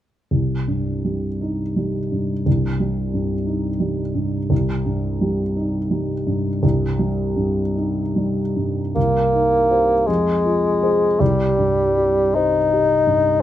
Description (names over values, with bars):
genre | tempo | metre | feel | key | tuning
classical, romantic duo for bassoon and grand piano | 48-60 BPM (dotted quarters) | 6/8 | rubato | C minor | A4 = 440 Hz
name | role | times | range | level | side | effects
dark baby grand piano | accompaniment | 0.3-13.4 s | C2 to C5 | -20 LUFS | equal | none
mellow bassoon | melody | 9.0-13.4 s | G3 to Eb4 | -16 LUFS | left 1 dB | none
room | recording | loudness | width
light reverb | none | -17 LUFS | side -12 dB against mid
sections
0.3-9.0 A section; 9.0-13.4 B section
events
none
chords
0.3 Cm; 10.1 Fm; 11.2 Cm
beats
| 0.32 1.41 | 2.46 3.47 | 4.51 5.57 | 6.63 7.76 | 8.96 10.08 | 11.21 12.37 | 13.42